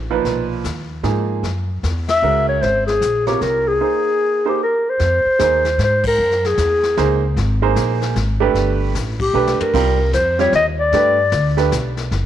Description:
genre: jazz, small-group swing and bop.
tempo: 152 BPM.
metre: 3/4.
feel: swing 64% on 8ths.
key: Ab major.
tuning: A4 = 440 Hz.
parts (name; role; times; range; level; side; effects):
upright bass; bass; 0.0-12.3 s; Gb1 to G#2; -20 LUFS; equal; none.
clear baby grand piano; accompaniment; 0.1-11.7 s; Bb2 to Db5; -21 LUFS; right 9 dB; none.
vintage brush drum kit; drums; 0.2-12.3 s; brushed snare drum, crash cymbal, hi-hat, kick drum, ride cymbal, snare drum, toms; -29 LUFS; left 6 dB; none.
dark clarinet; melody; 2.1-11.5 s; G4 to Fb5; -16 LUFS; left 2 dB; none.
room: moderate echo chamber reverb, RT60 1.7 s, small room ambience.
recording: 1960s-style stereo with parts hard left and right.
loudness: -15 LUFS.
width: side -11 dB against mid.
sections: 0.0-5.0 A section; 5.0-12.3 B section.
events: band accent 2.0, 6.0, 9.1; drum fill 9.3-9.7.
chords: 0.2 B6; 1.4 Gb9; 2.6 Abadd9; 5.0 Fm7; 6.2 Gb9; 7.4 Abmaj7; 8.6 G; 9.7 Cm7; 10.9 Gadd9.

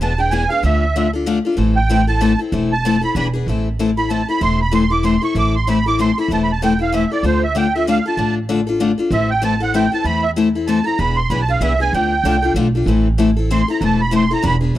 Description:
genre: acoustic string swing (jazz manouche).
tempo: 191 BPM.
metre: 3/4.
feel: swing 58% on 8ths.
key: A minor.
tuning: A4 = 436 Hz.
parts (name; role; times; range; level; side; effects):
musette accordion; melody; 0.0-14.6 s; C5 to D6; -20 LUFS; right 4 dB; none.
picked steel-string acoustic guitar; accompaniment; 0.0-14.8 s; D3 to A4; -18 LUFS; left 4 dB; none.
upright bass; bass; 0.0-14.8 s; E1 to E2; -20 LUFS; right 1 dB; none.
room: small room ambience.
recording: dry, close 1970s-style studio recording.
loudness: -14 LUFS.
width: side -13 dB against mid.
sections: 0.0-3.5 A section; 3.5-14.8 A section.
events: accordion solo 0.0-14.8.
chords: 0.0 E7; 0.6 Dm; 1.6 Am; 3.2 E7; 3.5 Am; 7.2 Dm; 9.1 Am; 11.0 E7; 11.9 Dm; 12.9 Am; 14.4 E7.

